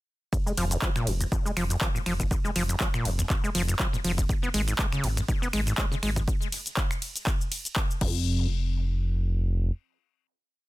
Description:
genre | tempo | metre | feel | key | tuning
acid house | 121 BPM | 4/4 | swing 55% on 16ths | F minor | A4 = 442 Hz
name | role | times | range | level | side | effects
deep acid bass | riff | 0.3-8.5 s | Eb2 to Cb4 | -29 LUFS | equal | overdrive, sidechain pumping, ping-pong delay
electronic kick drum | drums | 0.3-8.1 s | none | -28 LUFS | equal | none
punchy analog drum machine | drums | 0.3-8.1 s | cabasa, crash cymbal, finger snaps, handclaps, hi-hat, ride cymbal | -32 LUFS | equal | none
round analog bass | bass | 0.6-9.7 s | F1 to Ab1 | -28 LUFS | equal | tube saturation, sidechain pumping
room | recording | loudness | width
little or no reverb | dense, heavily limited modern master | -25 LUFS | side -18 dB against mid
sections
0.3-8.3 drop; 8.3-10.7 final hit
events
drop 0.3-8.3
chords
none

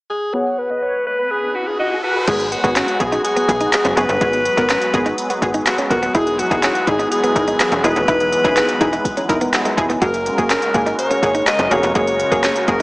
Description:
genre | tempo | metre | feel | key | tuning
dance-pop | 124 BPM | 4/4 | straight | G# minor | A4 = 440 Hz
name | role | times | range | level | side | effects
edgy alto saxophone | melody | 0.1-12.8 s | F#4 to D#5 | -19 LUFS | left 1 dB | low-pass filter, analog delay
airy dreamy lead | melody | 0.3-2.1 s | B4 to F#5 | -24 LUFS | right 1 dB | chorus, low-pass filter, analog delay
analog pluck | accompaniment | 0.3-12.8 s | A#3 to B4 | -21 LUFS | equal | chorus, low-pass filter, analog delay
riser | sound effects | 1.2-2.3 s | none | -27 LUFS | equal | none
filtered supersaw swell | sustained chords | 2.3-12.8 s | C#3 to A#4 | -24 LUFS | equal | sidechain pumping
direct-recorded clean electric guitar | riff | 2.3-12.8 s | G#3 to F#4 | -24 LUFS | right 1 dB | analog chorus, analog delay
slap-like FM bass | bass | 2.3-12.8 s | D#1 to B1 | -24 LUFS | equal | sidechain pumping
smooth R&B drum kit | drums | 2.3-12.8 s | crash cymbal, handclaps, hi-hat, kick drum, snare drum | -21 LUFS | equal | analog delay
room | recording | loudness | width
moderate spring reverb, RT60 1.6 s | echo-heavy mix, small speaker sound | -15 LUFS | side -21 dB against mid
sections
0.3-2.3 A section; 2.3-12.8 B section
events
filter sweep 0.3-2.3; riser 1.2-2.3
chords
0.3 G#m7; 6.1 Emaj7; 10.0 F#add9

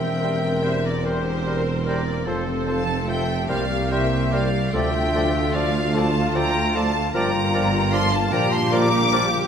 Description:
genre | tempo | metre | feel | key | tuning
classical, slow romantic movement for symphony orchestra | 49 BPM (dotted quarters) | 6/8 | rubato | unclear | A4 = 440 Hz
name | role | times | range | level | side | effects
rich studio violin section | melody | 0.0-9.5 s | C5 to D6 | -28 LUFS | left 2 dB | none
rich studio violin section | second line | 0.0-9.5 s | C5 to D6 | -30 LUFS | equal | none
silver concert flute | second line | 0.0-9.3 s | G4 to Bb5 | -29 LUFS | left 1 dB | none
rich studio viola section | accompaniment | 0.0-9.5 s | A3 to Bb4 | -29 LUFS | right 2 dB | none
warm French horn section | sustained chords | 0.0-9.5 s | G3 to Bb4 | -29 LUFS | left 4 dB | none
concert harp | arpeggios | 0.0-9.5 s | G2 to C6 | -32 LUFS | left 9 dB | none
mellow tuba | bass | 0.0-9.5 s | E1 to D2 | -28 LUFS | right 4 dB | none
rich studio double bass section | bass | 0.0-9.5 s | E1 to D2 | -28 LUFS | right 3 dB | none
warm studio cello section | bass | 0.0-9.5 s | C2 to Bb2 | -28 LUFS | right 2 dB | none
dark clarinet | second line | 0.2-9.3 s | A4 to Bb4 | -33 LUFS | left 2 dB | none
warm cor anglais | second line | 0.2-9.3 s | C5 to D5 | -34 LUFS | right 2 dB | none
mellow bassoon | accompaniment | 0.2-9.3 s | F3 to G3 | -31 LUFS | right 1 dB | none
room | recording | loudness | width
moderate concert hall reverb, RT60 2.1 s | none | -19 LUFS | side -7 dB against mid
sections
0.0-9.5 A section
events
none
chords
0.0 C7/E; 2.3 F; 3.5 C5; 4.7 Dm; 7.1 Gm7

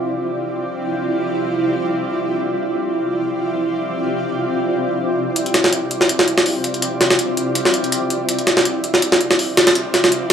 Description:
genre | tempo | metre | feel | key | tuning
drum and bass, jungle | 164 BPM | 4/4 | swing 54% on 16ths | D minor | A4 = 440 Hz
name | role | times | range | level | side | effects
granular cloud pad | sustained chords | 0.0-10.3 s | C4 to D5 | -19 LUFS | equal | built-in reverb
jungle sampler-style drum kit | drums | 5.4-10.3 s | hi-hat, snare drum | -15 LUFS | equal | none
room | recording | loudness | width
moderate lush hall reverb, RT60 2.1 s | small room ambience | -16 LUFS | side -8 dB against mid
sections
0.0-10.3 A section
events
none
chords
0.0 Dm11

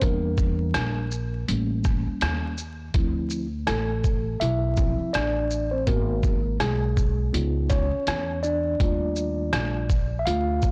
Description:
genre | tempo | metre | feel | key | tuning
hip hop, jazz-hop | 82 BPM | 4/4 | swing 58% on 16ths | unclear | A4 = 443 Hz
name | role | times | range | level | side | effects
mellow tine electric piano | accompaniment | 0.0-10.7 s | F3 to F5 | -30 LUFS | equal | none
upright bass | bass | 0.0-10.7 s | Ab1 to E2 | -29 LUFS | equal | none
trip hop sampler-style drum kit | drums | 0.0-10.7 s | hi-hat, kick drum, rim click, shaker | -28 LUFS | equal | soft clipping on snare
room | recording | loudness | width
light reverb | blown-out, overdriven recording, vinyl crackle, overdrive | -25 LUFS | mono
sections
0.0-10.7 A section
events
tine electric piano solo 0.0-10.7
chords
0.0 Em7b5; 1.5 A7b9; 2.9 Dm9; 5.9 Abm7; 7.3 Db9; 8.8 Ebmaj9#11

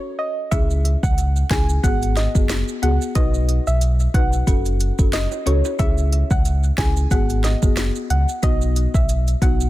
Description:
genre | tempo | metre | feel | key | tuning
dancehall | 91 BPM | 4/4 | swing 56% on 16ths | C# minor | A4 = 440 Hz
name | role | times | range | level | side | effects
soft round pluck | melody | 0.2-9.6 s | C#5 to G#5 | -27 LUFS | right 1 dB | chorus, tape echo
folk marimba with medium mallets | accompaniment | 0.5-9.7 s | B3 to B4 | -27 LUFS | left 3 dB | sidechain pumping
sub bass with octave | bass | 0.5-9.7 s | F#1 to C#2 | -19 LUFS | equal | none
afro-pop drum kit | drums | 0.5-9.6 s | hi-hat, kick drum, snare drum | -20 LUFS | equal | none
maracas and timbales | percussion | 0.5-9.7 s | none | -36 LUFS | right 9 dB | none
room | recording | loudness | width
digital ambience | dense, heavily limited modern master | -16 LUFS | side -16 dB against mid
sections
0.0-9.7 A section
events
break 0.0-0.5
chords
0.0 N.C.; 0.5 C#m; 1.8 G#m7; 3.2 B; 4.5 F#m; 5.8 C#m; 7.1 G#m7; 8.4 B

